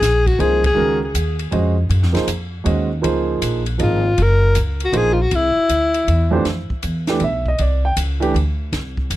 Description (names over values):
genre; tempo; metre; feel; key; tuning
modal jazz; 158 BPM; 3/4; swing 65% on 8ths; unclear; A4 = 440 Hz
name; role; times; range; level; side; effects
clear alto saxophone; melody; 0.0-1.0, 3.8-6.3 s; E4 to Bb4; -18 LUFS; left 2 dB; tape echo
upright bass; bass; 0.0-9.2 s; Gb1 to Gb2; -18 LUFS; equal; none
compact cocktail drum kit; drums; 0.0-9.2 s; hi-hat, kick drum, ride cymbal, snare drum; -28 LUFS; equal; none
warm grand piano; accompaniment; 0.4-8.3 s; F2 to G5; -20 LUFS; right 4 dB; none
room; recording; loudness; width
little or no reverb; dry, close 1970s-style studio recording; -15 LUFS; side -15 dB against mid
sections
0.0-6.5 A section; 6.5-9.2 B section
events
band accent 0.6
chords
0.0 Dbmaj9; 1.9 Gbmaj9; 5.3 Cadd9; 6.5 Fmaj7sus2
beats
0.01 0.39 | 0.77 1.15 1.53 | 1.90 2.28 2.66 | 3.04 3.42 3.80 | 4.18 4.56 4.93 | 5.31 5.69 6.07 | 6.45 6.83 7.21 | 7.59 7.97 8.35 | 8.72 9.11